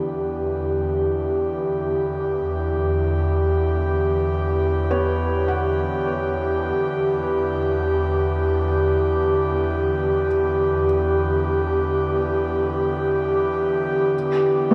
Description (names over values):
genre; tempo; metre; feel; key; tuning
ambient; free time; none; none; E dorian; A4 = 438 Hz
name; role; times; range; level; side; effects
airy breathy pad; sustained chords; 0.0-14.7 s; D3 to G4; -23 LUFS; equal; chorus
rich studio double bass section; bass; 0.0-14.1 s; E2; -28 LUFS; equal; none
felt-muted upright piano; arpeggios; 4.9-14.7 s; A3 to F#5; -30 LUFS; equal; diffuse ambient delay
room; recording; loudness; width
wet lush hall reverb, RT60 2.6 s; none; -22 LUFS; mono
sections
0.0-14.1 A section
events
none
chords
0.0 Em7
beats
free time